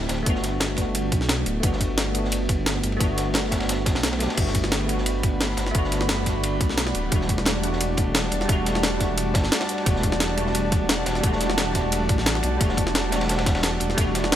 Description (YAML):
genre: liquid drum and bass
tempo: 175 BPM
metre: 4/4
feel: straight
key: G major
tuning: A4 = 441 Hz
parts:
  - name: bell-like tine electric piano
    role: accompaniment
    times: 0.0-14.4 s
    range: G3 to A4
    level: -27 LUFS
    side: equal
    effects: analog chorus, ping-pong delay
  - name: dark detuned saw bass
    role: bass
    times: 0.0-14.4 s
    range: D1 to B1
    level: -27 LUFS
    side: equal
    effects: none
  - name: crunchy breakbeat drum kit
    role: drums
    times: 0.0-14.4 s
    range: ride cymbal, snare drum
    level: -31 LUFS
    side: equal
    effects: high-pass filter on cymbals, high-pass filter on snare, high-pass filter on room
  - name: jungle sampler-style drum kit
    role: drums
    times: 0.1-14.4 s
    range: crash cymbal, hi-hat, snare drum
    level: -26 LUFS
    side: equal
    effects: none
  - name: electronic kick drum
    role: drums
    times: 0.3-14.0 s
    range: none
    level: -24 LUFS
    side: equal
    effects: none
  - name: airy breathy pad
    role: sustained chords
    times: 4.8-14.4 s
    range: G3 to B5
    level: -30 LUFS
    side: equal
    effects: chorus
room: light reverb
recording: none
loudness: -20 LUFS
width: side -11 dB against mid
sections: 0.0-14.4 A section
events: none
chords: 0.3 Gmaj7; 7.1 Em11